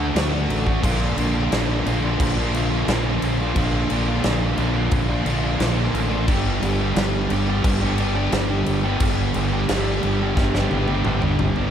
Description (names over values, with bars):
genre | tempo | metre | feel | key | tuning
classic rock | 88 BPM | 4/4 | straight | unclear | A4 = 440 Hz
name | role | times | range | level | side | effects
sludgy distorted guitar | riff | 0.0-11.7 s | G2 to G4 | -22 LUFS | right 1 dB | overdrive
fuzz fingered electric bass | bass | 0.0-11.7 s | G1 to D2 | -24 LUFS | equal | overdrive
huge arena drum kit | drums | 0.2-11.7 s | crash cymbal, kick drum, snare drum, toms | -25 LUFS | left 1 dB | none
room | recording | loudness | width
light reverb | none | -18 LUFS | side -9 dB against mid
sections
0.0-11.7 A section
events
drum fill 10.4-11.7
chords
0.0 D; 0.8 Bb; 6.3 G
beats
0.15 | 0.83 1.51 2.20 2.88 | 3.56 4.24 4.92 5.60 | 6.28 6.96 7.64 8.32 | 9.00 9.69 10.37 11.05